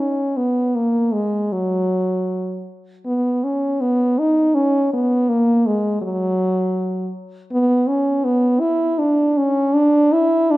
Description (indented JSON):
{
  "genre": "classical, free, expressive piece for unaccompanied French horn",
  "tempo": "80 BPM",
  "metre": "3/4",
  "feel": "rubato",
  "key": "B major",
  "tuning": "A4 = 440 Hz",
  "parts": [
    { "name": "warm French horn", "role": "solo", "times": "0.0-10.6 s", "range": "F#3 to E4", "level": "-16 LUFS", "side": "equal", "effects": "none" }
  ],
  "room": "moderate recital hall reverb, RT60 1.6 s",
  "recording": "none",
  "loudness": "-16 LUFS",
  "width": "side -17 dB against mid",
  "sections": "0.0-10.6 A section",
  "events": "none",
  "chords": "none"
}